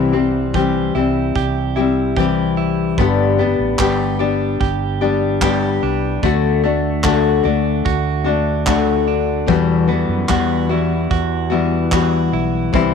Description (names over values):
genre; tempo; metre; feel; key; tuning
acoustic pop; 74 BPM; 4/4; straight; unclear; A4 = 440 Hz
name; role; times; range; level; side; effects
nylon-string guitar; accompaniment; 0.0-12.9 s; E2 to G4; -17 LUFS; left 8 dB; none
direct-recorded clean electric guitar; arpeggios; 0.0-12.9 s; E3 to G4; -23 LUFS; right 12 dB; none
fretless electric bass; bass; 0.0-12.9 s; G1 to F#2; -22 LUFS; right 2 dB; transformer saturation
soft brush drum kit; drums; 0.5-12.9 s; handclaps, kick drum; -22 LUFS; right 3 dB; none
room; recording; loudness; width
light reverb, studio reverb; 1960s-style stereo with parts hard left and right; -15 LUFS; side -6 dB against mid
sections
0.0-12.9 A section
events
none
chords
0.0 C; 3.0 G; 6.2 D; 9.5 Emadd9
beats
0.54 1.35 2.17 | 2.98 3.79 4.61 5.42 | 6.23 7.04 7.86 8.67 | 9.49 10.30 11.11 11.93 | 12.74